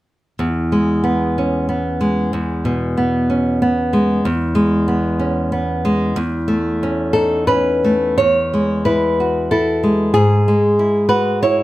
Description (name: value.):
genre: romantic piece for solo classical guitar.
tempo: 93 BPM.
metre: 3/4.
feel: rubato.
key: E major.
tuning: A4 = 439 Hz.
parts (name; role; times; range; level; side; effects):
nylon-string guitar; solo; 0.4-11.6 s; E2 to C#5; -14 LUFS; equal; none.
room: light reverb.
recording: close, detailed microphones.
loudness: -14 LUFS.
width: side -16 dB against mid.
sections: 0.4-8.2 A section; 8.2-11.6 B section.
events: none.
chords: 0.4 E; 6.2 A/E; 8.2 E; 10.2 E/G#.